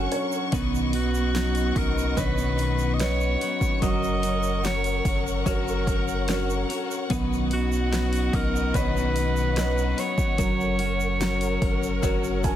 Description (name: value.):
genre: pop ballad.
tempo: 73 BPM.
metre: 4/4.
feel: straight.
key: F# major.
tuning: A4 = 441 Hz.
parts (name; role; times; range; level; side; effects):
warm baby grand piano; accompaniment; 0.0-12.6 s; F#3 to G#5; -31 LUFS; right 5 dB; none.
warm studio string section; sustained chords; 0.0-12.6 s; B3 to C#6; -32 LUFS; left 1 dB; none.
twelve-string electric guitar; arpeggios; 0.0-12.6 s; B2 to B4; -30 LUFS; left 8 dB; none.
warm sub bass; bass; 0.0-12.6 s; F#1 to B1; -28 LUFS; equal; none.
deep house drum kit; drums; 0.1-12.6 s; hi-hat, kick drum, snare drum; -28 LUFS; equal; none.
tube shaker; percussion; 0.1-12.6 s; none; -42 LUFS; right 14 dB; none.
bright alto saxophone; melody; 0.9-12.5 s; F#4 to D#5; -29 LUFS; right 1 dB; none.
room: light reverb, studio reverb.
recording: dense, heavily limited modern master.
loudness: -22 LUFS.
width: side -11 dB against mid.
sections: 0.0-12.6 A section.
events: grand piano fill 0.0-0.5, 12.0-12.6.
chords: 0.0 F#; 0.5 Badd9; 3.8 F#; 7.1 Badd9; 10.4 F#.